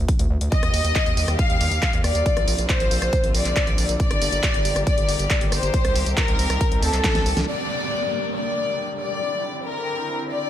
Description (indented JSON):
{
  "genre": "uplifting trance",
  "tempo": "138 BPM",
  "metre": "4/4",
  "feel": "straight",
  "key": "G minor",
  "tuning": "A4 = 440 Hz",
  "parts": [
    { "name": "gritty driven synth bass", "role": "bass", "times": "0.0-7.4 s", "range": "G1 to Eb2", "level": "-24 LUFS", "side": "equal", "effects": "sidechain pumping" },
    { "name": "big-room dance drum kit", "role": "drums", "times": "0.1-10.5 s", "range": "crash cymbal, handclaps, hi-hat, rim click, snare drum, tambourine", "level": "-26 LUFS", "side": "equal", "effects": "sidechain pumping on hats, low-pass filter on hats, studio reverb, sidechain pumping on perc, low-pass filter on perc, low-pass filter on snare, sidechain pumping on cymbals, low-pass filter on cymbals" },
    { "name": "electronic kick drum", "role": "drums", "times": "0.1-7.1 s", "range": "none", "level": "-22 LUFS", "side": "equal", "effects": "studio reverb" },
    { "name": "warm studio violin section", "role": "second line", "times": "0.5-10.5 s", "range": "A4 to F5", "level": "-24 LUFS", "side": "left 2 dB", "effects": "ping-pong delay" },
    { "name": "bright symphonic string section", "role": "sustained chords", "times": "0.5-10.5 s", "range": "D3 to G4", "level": "-32 LUFS", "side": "equal", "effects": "sidechain pumping, low-pass filter" },
    { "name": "downlifter", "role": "sound effects", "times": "7.5-10.5 s", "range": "none", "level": "-31 LUFS", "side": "right 2 dB", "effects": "none" }
  ],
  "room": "light reverb, digital ambience",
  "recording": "none",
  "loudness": "-19 LUFS",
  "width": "side -11 dB against mid",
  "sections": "0.0-7.5 A section; 7.5-10.5 B section",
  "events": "drum fill 7.0-7.5; filter sweep on string section 7.5-10.5",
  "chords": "0.0 N.C.; 0.5 Eb; 2.3 Bbadd9; 4.0 Gm; 5.7 Cm7; 7.5 Gm; 9.2 Cadd9",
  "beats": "0.09 | 0.52 0.95 1.39 1.82 | 2.26 2.69 3.13 3.56 | 4.00 4.43 4.87 5.30 | 5.74 6.17 6.61 7.04 | 7.48 7.91 8.35 8.78 | 9.22 9.65 10.09"
}